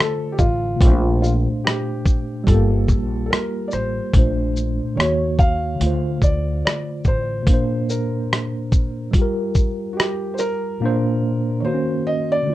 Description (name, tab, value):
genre	lo-fi hip hop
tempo	72 BPM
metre	4/4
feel	swing 65% on 16ths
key	Bb major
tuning	A4 = 439 Hz
part	felt-muted upright piano	melody	0.0-12.5 s	F4 to F5	-25 LUFS	equal	none
part	tine electric piano	accompaniment	0.0-12.5 s	Bb2 to Db5	-22 LUFS	equal	overdrive, fast stereo tremolo
part	dusty soul sampler-style drum kit	drums	0.0-10.6 s	hi-hat, kick drum, rim click, shaker	-17 LUFS	equal	none
part	upright bass	bass	0.4-7.4 s	G1 to Eb2	-21 LUFS	equal	none
room	light reverb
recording	rough home demo mix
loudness	-17 LUFS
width	side -15 dB against mid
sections	0.0-12.5 A section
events	none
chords	0.0 Dm7; 0.8 Bbmaj9; 2.5 Gm9; 4.1 Bbmaj9; 5.0 Ebm7; 5.8 Dm7; 7.5 Bbadd9; 9.1 Gm7; 10.8 Bbadd9; 11.6 Ebm7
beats	| 0.81 1.64 2.47 3.31 | 4.14 4.97 5.80 6.64 | 7.47 8.30 9.14 9.97 | 10.80 11.64 12.47